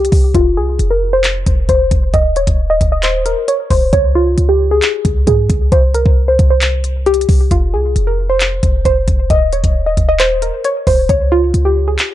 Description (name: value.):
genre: hip hop, trap.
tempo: 134 BPM.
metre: 4/4.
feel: half-time.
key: F minor.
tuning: A4 = 441 Hz.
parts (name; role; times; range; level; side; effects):
soft round pluck; melody; 0.0-12.1 s; F4 to Eb5; -15 LUFS; equal; chorus, low-pass filter, ping-pong delay.
clean 808-style bass; bass; 0.0-12.0 s; Eb1 to Ab2; -15 LUFS; equal; none.
trap drum kit; drums; 0.0-12.1 s; handclaps, hi-hat, kick drum; -15 LUFS; equal; vintage 12-bit sampler grit.
room: little or no reverb.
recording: dark, warm production.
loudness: -11 LUFS.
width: side -13 dB against mid.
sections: 0.0-12.1 A section.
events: filter sweep on synth pluck 0.0-7.5.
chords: 0.3 F5; 2.1 Bbmadd11/Eb; 3.9 Db5; 5.7 C5; 7.5 F5; 9.3 Bbmadd11/Eb; 11.1 Db5.